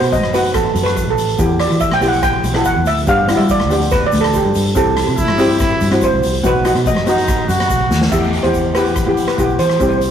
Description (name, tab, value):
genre	calypso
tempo	143 BPM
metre	4/4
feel	straight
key	E minor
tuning	A4 = 441 Hz
part	steel pan	melody	0.0-10.1 s	G4 to G5	-18 LUFS	right 3 dB	none
part	steel pan	accompaniment	0.0-10.0 s	B3 to A4	-18 LUFS	left 2 dB	none
part	fingered electric bass	bass	0.0-10.1 s	A1 to G3	-19 LUFS	equal	none
part	street-band drum kit	drums	0.0-10.1 s	crash cymbal, hi-hat, kick drum, rim click, snare drum	-20 LUFS	equal	none
part	egg shaker	percussion	0.1-10.1 s	none	-36 LUFS	left 3 dB	none
part	clear trumpet	second line	5.2-8.1 s	D#4 to F#4	-19 LUFS	right 1 dB	none
room	moderate stone room reverb, RT60 1.3 s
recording	rough rehearsal-room recording, warm saturation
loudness	-12 LUFS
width	side -8 dB against mid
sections	0.0-8.1 A section; 8.1-10.1 B section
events	steel pan solo 0.0-8.1; drum fill 7.9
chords	0.0 B; 1.4 Em; 3.1 G; 4.8 C; 6.4 B; 8.1 Em